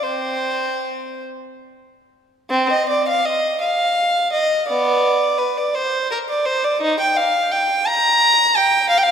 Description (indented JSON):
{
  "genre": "classical, baroque-style suite movement for unaccompanied violin",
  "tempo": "46-59 BPM (dotted quarters)",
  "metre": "6/8",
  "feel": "rubato",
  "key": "C minor",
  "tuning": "A4 = 440 Hz",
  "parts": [
    { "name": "dark violin", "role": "solo", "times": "0.0-9.1 s", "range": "B3 to Bb5", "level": "-16 LUFS", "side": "equal", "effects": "none" }
  ],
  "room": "wet concert hall reverb, RT60 2.4 s",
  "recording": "minimal, uncompressed stereo recording",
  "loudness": "-16 LUFS",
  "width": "side -8 dB against mid",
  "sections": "0.0-2.5 A section; 2.5-9.1 A section",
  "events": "none",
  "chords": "none"
}